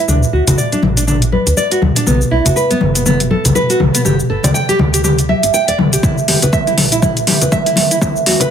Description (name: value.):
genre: afro house.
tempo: 121 BPM.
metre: 4/4.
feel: swing 58% on 16ths.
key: E minor.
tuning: A4 = 440 Hz.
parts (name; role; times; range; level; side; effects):
nylon-string guitar; arpeggios; 0.0-8.5 s; B3 to G5; -16 LUFS; right 2 dB; sidechain pumping, low-pass filter, dub echo.
woody FM bass; bass; 0.1-8.5 s; D1 to D2; -19 LUFS; equal; sidechain pumping.
deep house drum kit; drums; 0.1-8.5 s; hi-hat, shaker, toms; -15 LUFS; left 1 dB; overdrive.
congas; percussion; 0.1-8.5 s; none; -18 LUFS; left 3 dB; none.
electronic kick drum; drums; 6.0-8.1 s; none; -18 LUFS; equal; overdrive.
room: light reverb, digital ambience.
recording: high-pass filter.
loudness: -11 LUFS.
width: side -8 dB against mid.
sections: 0.0-8.5 A section.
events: build-up 0.0-8.5; drum fill 0.0-8.5; filter sweep on nylon-string guitar 0.0-8.5.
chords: 0.1 D; 2.1 B5; 4.0 G5; 6.0 Em.